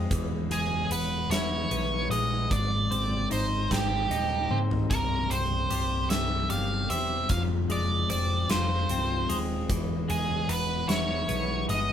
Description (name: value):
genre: quiet-loud alternative rock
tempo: 50 BPM (dotted quarters)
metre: 6/8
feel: straight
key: unclear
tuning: A4 = 440 Hz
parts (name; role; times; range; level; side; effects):
- twelve-string electric guitar; arpeggios; 0.0-11.9 s; C2 to F4; -32 LUFS; left 3 dB; spring reverb
- overdriven picked electric bass; bass; 0.0-11.9 s; C1 to Ab2; -30 LUFS; equal; none
- huge arena drum kit; drums; 0.1-11.9 s; hi-hat, kick drum, snare drum, toms; -32 LUFS; right 1 dB; none
- octave-fuzz lead guitar; melody; 0.5-11.9 s; G4 to F5; -30 LUFS; right 2 dB; distortion
room: light reverb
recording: band playing live in one room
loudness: -25 LUFS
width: side -9 dB against mid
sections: 0.0-11.9 A section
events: drum fill 4.5-4.9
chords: 0.1 E; 2.5 Ab; 4.9 C; 7.3 Fm; 9.7 E